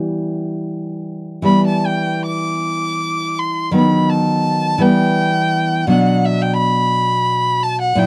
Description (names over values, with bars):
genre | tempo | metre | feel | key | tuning
romantic duo for violin and classical guitar | 46-58 BPM (dotted quarters) | 6/8 | rubato | E minor | A4 = 437 Hz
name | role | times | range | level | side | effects
nylon-string guitar | accompaniment | 0.0-8.1 s | A#2 to G4 | -19 LUFS | equal | none
rich violin | melody | 1.5-8.1 s | E5 to D6 | -20 LUFS | equal | none
room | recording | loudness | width
little or no reverb | dry, close 1970s-style studio recording | -17 LUFS | mono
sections
0.0-1.5 A section; 1.5-8.1 A section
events
none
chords
0.0 Em; 3.8 B7/D#; 4.8 Em; 5.9 Bm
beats
0.21 | 1.46 2.66 | 3.75 4.82 | 5.89 6.93 | 7.98